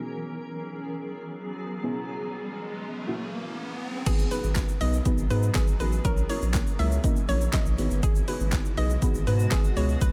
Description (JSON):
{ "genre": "dance-pop", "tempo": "121 BPM", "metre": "4/4", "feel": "straight", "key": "G# minor", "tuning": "A4 = 441 Hz", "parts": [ { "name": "deep mellow chord stab", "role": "accompaniment", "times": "0.0-10.1 s", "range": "A#3 to D#5", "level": "-36 LUFS", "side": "equal", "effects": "chorus, phaser, sidechain pumping, low-pass filter" }, { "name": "granular cloud pad", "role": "sustained chords", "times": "0.0-10.1 s", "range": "B2 to G#4", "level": "-38 LUFS", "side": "equal", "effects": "built-in reverb, sidechain pumping, low-pass filter" }, { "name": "riser", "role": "sound effects", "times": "1.3-4.1 s", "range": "none", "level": "-43 LUFS", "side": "equal", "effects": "none" }, { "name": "hollow square pluck", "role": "melody", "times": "4.1-10.1 s", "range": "G#4 to E5", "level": "-36 LUFS", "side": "equal", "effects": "chorus, sidechain pumping, tape echo" }, { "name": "saturated sub bass", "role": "bass", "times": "4.1-10.1 s", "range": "G1 to G#2", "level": "-28 LUFS", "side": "equal", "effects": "sidechain pumping" }, { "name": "deep house drum kit", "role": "drums", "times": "4.1-10.1 s", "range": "crash cymbal, handclaps, hi-hat, kick drum, shaker, snare drum", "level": "-29 LUFS", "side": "equal", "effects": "none" }, { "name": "egg shaker", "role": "percussion", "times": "4.1-10.1 s", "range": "none", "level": "-49 LUFS", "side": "equal", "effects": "none" } ], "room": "light reverb", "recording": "none", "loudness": "-27 LUFS", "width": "mono", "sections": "0.0-4.1 A section; 4.1-10.1 B section", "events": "riser 1.5-4.1; drop 4.1-10.1", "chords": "0.0 G#m7; 1.8 C#m7; 3.1 F#7; 4.1 G#m7; 6.0 A#dim; 7.8 G#m7", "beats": "| 0.10 0.59 1.09 1.58 | 2.08 2.58 3.07 3.57 | 4.06 4.56 5.06 5.55 | 6.05 6.54 7.04 7.54 | 8.03 8.53 9.02 9.52 | 10.02" }